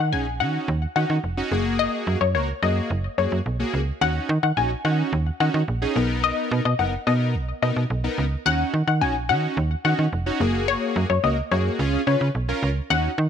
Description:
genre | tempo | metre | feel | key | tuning
dance-pop | 108 BPM | 4/4 | straight | Eb minor | A4 = 440 Hz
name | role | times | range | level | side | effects
wide unison pluck | melody | 0.0-13.1 s | Db5 to Ab5 | -25 LUFS | left 8 dB | tape echo
slap-like FM bass | bass | 0.0-13.3 s | F1 to Eb3 | -23 LUFS | right 2 dB | none
big bright polysynth | accompaniment | 0.1-13.1 s | Bb3 to Cb5 | -27 LUFS | equal | chorus
room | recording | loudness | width
light reverb | none | -20 LUFS | side -8 dB against mid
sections
0.0-12.9 A section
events
none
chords
0.0 Ebm7; 1.5 Gbadd9; 4.0 Ebm7; 6.0 Bmaj7; 8.5 Ebm7; 10.4 Gbadd9; 11.8 Db

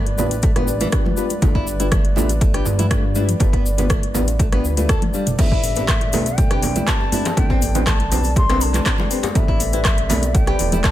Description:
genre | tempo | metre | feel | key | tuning
afro house | 121 BPM | 4/4 | straight | A minor | A4 = 440 Hz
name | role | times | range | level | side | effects
dark analog pad | sustained chords | 0.0-10.9 s | G3 to D5 | -29 LUFS | right 4 dB | chorus, sidechain pumping
nylon-string guitar | arpeggios | 0.0-10.9 s | E3 to A4 | -27 LUFS | equal | sidechain pumping, dub echo
smooth synth bass | bass | 0.0-10.9 s | E1 to G2 | -22 LUFS | equal | sidechain pumping
afro-pop drum kit | drums | 0.1-10.9 s | crash cymbal, handclaps, hi-hat, rim click, toms | -24 LUFS | left 1 dB | small room ambience
congas | percussion | 0.1-10.9 s | none | -28 LUFS | right 3 dB | none
deep mellow chord stab | stabs | 0.2-10.9 s | C4 to D5 | -27 LUFS | left 4 dB | chorus, phaser, sidechain pumping, dub echo
egg shaker | percussion | 0.2-10.9 s | none | -32 LUFS | left 3 dB | none
electronic kick drum | drums | 0.4-10.9 s | none | -19 LUFS | equal | small room ambience
reedy bansuri | melody | 5.4-10.9 s | E5 to C6 | -26 LUFS | left 4 dB | dub echo
djembe | percussion | 5.5-10.8 s | none | -30 LUFS | left 3 dB | none
room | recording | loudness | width
small room reverb | none | -16 LUFS | side -13 dB against mid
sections
0.0-10.9 A section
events
drum fill 4.9-5.4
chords
0.0 G7; 5.4 Am11

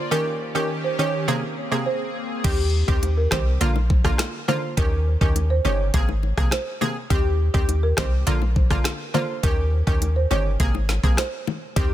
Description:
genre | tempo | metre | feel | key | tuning
dancehall | 103 BPM | 4/4 | straight | Eb major | A4 = 440 Hz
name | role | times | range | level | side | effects
wavetable chord stab | accompaniment | 0.0-11.9 s | C3 to Ab4 | -27 LUFS | right 1 dB | none
lush unison pad | sustained chords | 0.0-2.4, 11.8-11.9 s | Eb3 to D5 | -30 LUFS | left 1 dB | chorus, sidechain pumping
folk marimba with medium mallets | melody | 0.1-11.9 s | G4 to Db5 | -28 LUFS | right 2 dB | ping-pong delay
punchy sub bass | bass | 2.4-11.9 s | G1 to Eb2 | -22 LUFS | equal | none
island pop drum kit | drums | 2.4-11.9 s | crash cymbal, hi-hat, kick drum, rim click, snare drum | -22 LUFS | equal | none
bongos | percussion | 3.0-11.6 s | none | -31 LUFS | left 9 dB | none
room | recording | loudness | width
little or no reverb | dense, heavily limited modern master | -19 LUFS | side -13 dB against mid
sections
0.0-2.4 A section; 2.4-11.9 A section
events
none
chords
0.1 Eb7; 1.3 Abadd9; 2.4 Eb6; 3.6 Bb; 4.8 Eb7; 5.9 Abadd9; 7.1 Eb6; 8.3 Bb; 9.4 Eb7; 10.6 Abadd9

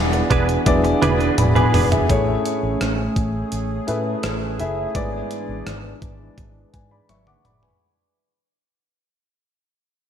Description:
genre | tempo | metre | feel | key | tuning
1980s-style pop | 84 BPM | 4/4 | straight | E mixolydian | A4 = 440 Hz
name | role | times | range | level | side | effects
warm concert grand piano | accompaniment | 0.0-8.0 s | G#2 to D6 | -23 LUFS | left 2 dB | none
sweeping resonant pad | sustained chords | 0.0-7.8 s | E3 to G#4 | -26 LUFS | right 1 dB | wide subtle chorus
vintage muted fingered electric bass | bass | 0.0-7.7 s | E1 to A2 | -25 LUFS | equal | none
direct-recorded clean electric guitar | riff | 0.1-2.0 s | B3 to B4 | -24 LUFS | right 4 dB | ensemble chorus, ping-pong delay, slapback echo
clean 12-bit digital drum machine | drums | 0.1-7.8 s | hi-hat, kick drum, rim click, toms | -22 LUFS | right 1 dB | none
room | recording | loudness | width
moderate lush hall reverb, RT60 1.9 s, digital ambience | big arena sound | -17 LUFS | side -8 dB against mid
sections
0.0-2.1 A section; 2.1-7.8 B section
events
drum fill 0.7-2.1, 7.1-7.8; fade-out 2.1-7.8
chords
0.0 E7; 2.1 Amaj7; 4.9 E7/G#

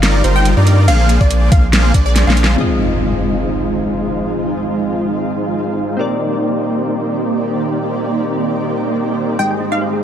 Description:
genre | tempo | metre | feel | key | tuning
future bass | 141 BPM | 4/4 | swing 54% on 16ths, half-time | F dorian | A4 = 436 Hz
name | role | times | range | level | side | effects
wide unison pluck | melody | 0.0-2.3, 9.4-10.0 s | D5 to G5 | -22 LUFS | left 1 dB | sidechain pumping, digital delay
shimmering ambient pad | sustained chords | 0.0-10.0 s | C3 to D5 | -26 LUFS | equal | chorus, built-in reverb, sidechain pumping
airy dreamy lead | arpeggios | 0.0-2.6 s | C5 to F5 | -26 LUFS | left 1 dB | chorus, sidechain pumping, digital delay
dense compressed supersaw | riff | 0.0-10.0 s | G3 to F5 | -18 LUFS | right 1 dB | sidechain pumping, low-pass filter, digital delay
saturated sub bass | bass | 0.0-2.6 s | G1 to G2 | -12 LUFS | equal | sidechain pumping
dubstep drum kit | drums | 0.0-2.5 s | crash cymbal, hi-hat, snare drum | -19 LUFS | equal | low-pass filter on hats, low-pass filter on snare, low-pass filter on cymbals
electronic kick drum | drums | 1.2-2.0 s | none | -12 LUFS | equal | none
glassy digital keys | accompaniment | 2.6-9.4 s | C4 to Eb5 | -24 LUFS | left 3 dB | chorus, sidechain pumping, digital delay
impact | sound effects | 2.6-4.3 s | none | -22 LUFS | equal | none
thumb-piano-like synth pluck | arpeggios | 9.4-10.0 s | Eb4 to Ab5 | -25 LUFS | left 4 dB | chorus, cassette tape, sidechain pumping
room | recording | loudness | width
light reverb, digital ambience | dark, warm production | -13 LUFS | side -9 dB against mid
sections
0.0-2.6 A section; 2.6-10.0 B section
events
drop 0.0-2.6; kick drops out 2.2-2.6; drum fill 2.2-2.6; band accent 2.4; impact 2.6-4.3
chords
0.0 Ebmaj9/G; 0.9 Bb9; 2.6 Fm7; 6.0 Cm9; 9.4 Abmaj7

